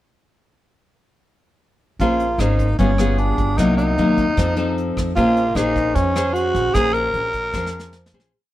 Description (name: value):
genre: bossa nova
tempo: 152 BPM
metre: 4/4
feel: straight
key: Bb minor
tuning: A4 = 436 Hz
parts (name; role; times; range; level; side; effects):
- growling tenor saxophone; melody; 2.0-8.1 s; Db4 to Bb4; -20 LUFS; equal; none
- nylon-string guitar; accompaniment; 2.0-8.3 s; C3 to C5; -21 LUFS; left 2 dB; none
- upright bass; bass; 2.0-8.3 s; G1 to F2; -23 LUFS; right 1 dB; none
- vintage brush drum kit; drums; 2.0-8.3 s; hi-hat, kick drum, rim click, snare drum; -28 LUFS; equal; none
room: light reverb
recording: none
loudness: -16 LUFS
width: side -14 dB against mid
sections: 2.0-8.3 A section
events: fade-out 6.7-8.3; drum fill 7.5-8.3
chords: 2.0 Bbm9; 2.8 G7b9; 3.6 Cm7b5; 4.4 F7; 5.2 Bbm9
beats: | 1.99 2.39 2.79 3.18 | 3.58 3.97 4.37 4.76 | 5.16 5.55 5.95 6.35 | 6.74 7.14 7.53 7.93